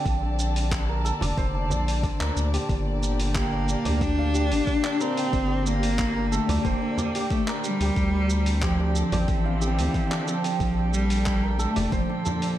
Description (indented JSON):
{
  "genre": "organic downtempo",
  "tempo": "91 BPM",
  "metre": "4/4",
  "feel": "straight",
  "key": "unclear",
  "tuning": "A4 = 440 Hz",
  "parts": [
    { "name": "muted studio string section", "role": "sustained chords", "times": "0.0-12.6 s", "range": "Bb2 to A5", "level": "-32 LUFS", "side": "left 2 dB", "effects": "sidechain pumping" },
    { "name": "santur", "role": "arpeggios", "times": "0.0-12.6 s", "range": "D4 to G5", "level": "-32 LUFS", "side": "right 3 dB", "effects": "ping-pong delay" },
    { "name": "round analog bass", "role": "bass", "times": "0.1-12.0 s", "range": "F1 to D2", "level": "-26 LUFS", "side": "equal", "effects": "sidechain pumping" },
    { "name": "dusty soul sampler-style drum kit", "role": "drums", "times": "0.1-12.6 s", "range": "handclaps, hi-hat, shaker", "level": "-34 LUFS", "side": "right 1 dB", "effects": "none" },
    { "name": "electronic kick drum", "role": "drums", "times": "0.1-12.1 s", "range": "none", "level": "-28 LUFS", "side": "equal", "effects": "none" },
    { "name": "frame drum", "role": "percussion", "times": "1.2-12.4 s", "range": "none", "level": "-32 LUFS", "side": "right 2 dB", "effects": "none" },
    { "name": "drifting glass-harmonics texture", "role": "texture", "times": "3.1-12.6 s", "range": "G5", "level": "-40 LUFS", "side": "right 2 dB", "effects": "chorus, built-in reverb" },
    { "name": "rich cello", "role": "melody", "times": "3.4-12.6 s", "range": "E3 to D4", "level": "-26 LUFS", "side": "equal", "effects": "ping-pong delay" }
  ],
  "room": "light reverb, studio reverb",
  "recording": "dark, warm production",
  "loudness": "-22 LUFS",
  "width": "side -12 dB against mid",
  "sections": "0.0-12.6 A section",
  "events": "none",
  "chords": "0.1 Bbmaj7; 8.0 Dm7; 10.6 Bbmaj7"
}